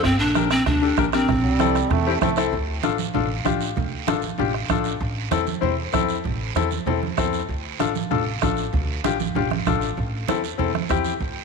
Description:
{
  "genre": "latin, cumbia",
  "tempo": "193 BPM",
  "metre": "4/4",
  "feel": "straight",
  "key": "D minor",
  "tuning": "A4 = 440 Hz",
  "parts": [
    { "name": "breathy bright pan flute", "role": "melody", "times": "0.0-2.2 s", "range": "C4 to D4", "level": "-21 LUFS", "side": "equal", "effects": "none" },
    { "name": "bright upright piano", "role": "accompaniment", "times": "0.0-11.1 s", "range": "C4 to C5", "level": "-24 LUFS", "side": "left 12 dB", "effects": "none" },
    { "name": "upright bass", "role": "bass", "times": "0.0-11.4 s", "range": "G1 to E2", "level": "-27 LUFS", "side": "equal", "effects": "none" },
    { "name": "bombo", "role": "percussion", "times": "0.0-11.4 s", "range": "none", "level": "-29 LUFS", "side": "right 6 dB", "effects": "none" },
    { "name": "guiro", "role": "percussion", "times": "0.0-11.4 s", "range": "none", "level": "-34 LUFS", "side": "right 14 dB", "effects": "none" },
    { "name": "congas", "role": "percussion", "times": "0.4-11.4 s", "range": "none", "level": "-28 LUFS", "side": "right 13 dB", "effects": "none" },
    { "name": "bright trombone", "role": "second line", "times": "1.4-2.5 s", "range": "G3 to A3", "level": "-28 LUFS", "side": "right 10 dB", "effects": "none" }
  ],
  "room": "moderate plate reverb, RT60 2.3 s",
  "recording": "1960s-style stereo with parts hard left and right",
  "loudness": "-20 LUFS",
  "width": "side -4 dB against mid",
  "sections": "0.0-2.5 A section; 2.5-11.4 B section",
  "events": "none",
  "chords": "0.0 Gm; 1.3 Am; 2.5 Dm; 5.0 Am; 7.5 Dm; 10.0 Am"
}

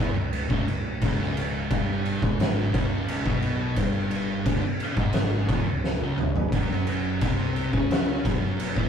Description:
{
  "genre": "stoner and doom metal",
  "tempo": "87 BPM",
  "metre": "4/4",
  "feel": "straight",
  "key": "C# minor",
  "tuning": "A4 = 441 Hz",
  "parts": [
    { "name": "thick fuzz guitar", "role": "riff", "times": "0.0-8.9 s", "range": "C#2 to E4", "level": "-30 LUFS", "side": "left 4 dB", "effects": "distortion" },
    { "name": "thick fuzz guitar", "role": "riff", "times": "0.0-8.9 s", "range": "C#2 to E4", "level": "-30 LUFS", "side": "right 4 dB", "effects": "distortion" },
    { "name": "fuzz fingered electric bass", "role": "bass", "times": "0.0-8.9 s", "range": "C#1 to E2", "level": "-37 LUFS", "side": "equal", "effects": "none" },
    { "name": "oversized low-tuned drum kit", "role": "drums", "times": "0.3-8.9 s", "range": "crash cymbal, kick drum, snare drum, toms", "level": "-25 LUFS", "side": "equal", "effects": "none" }
  ],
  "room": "light reverb",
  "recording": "rough rehearsal-room recording, tube saturation",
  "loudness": "-23 LUFS",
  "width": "side -7 dB against mid",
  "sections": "0.0-8.9 A section",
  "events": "drum fill 5.8-6.5",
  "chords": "0.0 C#m; 6.5 F#5"
}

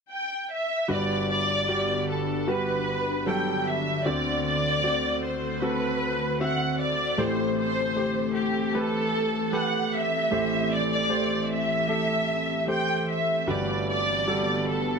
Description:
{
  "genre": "pop",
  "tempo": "76 BPM",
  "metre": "4/4",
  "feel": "straight",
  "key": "G major",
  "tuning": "A4 = 440 Hz",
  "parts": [
    { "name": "warm studio violin section", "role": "melody", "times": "0.1-15.0 s", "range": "G4 to G5", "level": "-26 LUFS", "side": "equal", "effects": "none" },
    { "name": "clear grand piano", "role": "accompaniment", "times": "0.9-15.0 s", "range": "G1 to E5", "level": "-28 LUFS", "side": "equal", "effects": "none" },
    { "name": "ethereal airy pad", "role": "sustained chords", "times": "1.8-15.0 s", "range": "D3 to B4", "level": "-31 LUFS", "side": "equal", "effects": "ensemble chorus, built-in reverb" }
  ],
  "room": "moderate studio ambience, RT60 0.5 s",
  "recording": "none",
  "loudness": "-24 LUFS",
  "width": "side -5 dB against mid",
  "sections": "0.9-15.0 A section",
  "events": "none",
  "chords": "0.0 N.C.; 0.9 Gmaj7; 4.1 D7; 7.2 Am7; 13.5 Gmaj7"
}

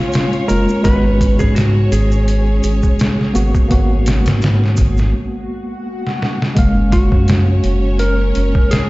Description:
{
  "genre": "trip hop",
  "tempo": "84 BPM",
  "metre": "4/4",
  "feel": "swing 55% on 16ths",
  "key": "G# dorian",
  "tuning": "A4 = 441 Hz",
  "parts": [
    { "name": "electric slide guitar", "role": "melody", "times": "0.0-8.9 s", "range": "E#4 to B4", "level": "-23 LUFS", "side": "equal", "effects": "tape echo" },
    { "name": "tine electric piano", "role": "accompaniment", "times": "0.0-8.9 s", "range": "G#3 to E#5", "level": "-20 LUFS", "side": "equal", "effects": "tremolo, vintage 12-bit sampler grit" },
    { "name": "rich symphonic violin section", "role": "sustained chords", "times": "0.0-8.9 s", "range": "C#4 to C#5", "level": "-26 LUFS", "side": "equal", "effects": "vintage 12-bit sampler grit" },
    { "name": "trip hop sampler-style drum kit", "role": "drums", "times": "0.1-8.9 s", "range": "hi-hat, kick drum, snare drum", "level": "-16 LUFS", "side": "equal", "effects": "none" },
    { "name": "maracas", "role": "percussion", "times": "0.1-5.1 s", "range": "none", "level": "-36 LUFS", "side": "right 4 dB", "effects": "none" },
    { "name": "round analog bass", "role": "bass", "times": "0.5-8.5 s", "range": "F#1 to G#2", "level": "-15 LUFS", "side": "equal", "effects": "tube saturation" },
    { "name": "swell", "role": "sound effects", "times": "5.4-6.6 s", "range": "none", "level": "-29 LUFS", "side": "left 2 dB", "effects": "none" }
  ],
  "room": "little or no reverb",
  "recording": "played on a big sound system in a bare room, large studio reverb, nothing above 7.7 kHz",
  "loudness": "-12 LUFS",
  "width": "side -20 dB against mid",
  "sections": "0.0-6.6 A section; 6.6-8.9 B section",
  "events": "filter sweep on tine electric piano 0.0-6.6; break 5.1-6.6; swell 5.4-6.6; drum fill 6.0-6.6",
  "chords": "0.0 F#maj7; 0.9 G#m7; 6.6 F#maj7"
}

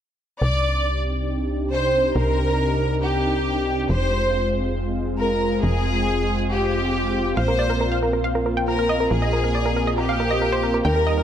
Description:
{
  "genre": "trance",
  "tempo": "138 BPM",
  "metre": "4/4",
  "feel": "straight",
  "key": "C minor",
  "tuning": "A4 = 440 Hz",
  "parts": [
    { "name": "clear studio violin section", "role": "second line", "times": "0.4-11.2 s", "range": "G4 to D5", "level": "-24 LUFS", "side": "equal", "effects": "tape echo" },
    { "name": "supersaw pad", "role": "sustained chords", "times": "0.4-11.2 s", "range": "C3 to G4", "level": "-25 LUFS", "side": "equal", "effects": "low-pass filter" },
    { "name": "tight sequencer bass", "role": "bass", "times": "0.4-11.2 s", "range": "F1 to Eb2", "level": "-24 LUFS", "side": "equal", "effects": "none" },
    { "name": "wide unison pluck", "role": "melody", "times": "7.4-11.2 s", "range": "Bb4 to G5", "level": "-23 LUFS", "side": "right 1 dB", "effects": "tape echo" }
  ],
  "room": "moderate lush hall reverb, RT60 2.6 s",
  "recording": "dark, warm production",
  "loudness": "-19 LUFS",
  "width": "side -9 dB against mid",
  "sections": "0.4-11.2 A section",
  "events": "filter sweep on supersaw synth 0.4-11.2",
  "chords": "0.4 Cmadd9; 3.9 Fm; 7.4 Bbsus2"
}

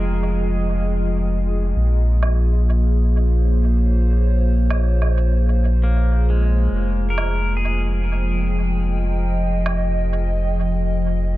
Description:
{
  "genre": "ambient dub",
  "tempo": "97 BPM",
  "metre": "4/4",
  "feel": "straight",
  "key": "F minor",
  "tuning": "A4 = 440 Hz",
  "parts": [
    { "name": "warbly tape-like pad", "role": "sustained chords", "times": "0.0-11.4 s", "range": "F3 to G5", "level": "-25 LUFS", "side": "right 1 dB", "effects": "chorus, built-in reverb, phaser" },
    { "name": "pedal steel guitar", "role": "arpeggios", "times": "0.0-10.5 s", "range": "Ab3 to Bb4", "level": "-30 LUFS", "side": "left 3 dB", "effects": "low-pass filter, dub echo" },
    { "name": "warm sub bass", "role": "bass", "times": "0.0-11.4 s", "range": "F1 to Bb1", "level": "-18 LUFS", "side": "equal", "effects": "none" },
    { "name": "woodblock", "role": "drums", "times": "2.2-9.8 s", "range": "none", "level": "-31 LUFS", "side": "right 3 dB", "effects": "low-pass filter on snare, low-pass filter on perc, low-pass filter on room, dub echo" }
  ],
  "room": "small room ambience",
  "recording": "nothing above 7.6 kHz, faint mains hum",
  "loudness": "-17 LUFS",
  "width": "side -16 dB against mid",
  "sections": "0.0-11.4 A section",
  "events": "filter sweep on drum 0.0-11.4; filter sweep on pedal steel guitar 0.0-11.4",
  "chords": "0.0 Fm7; 1.8 Bbm9; 6.7 Fm7"
}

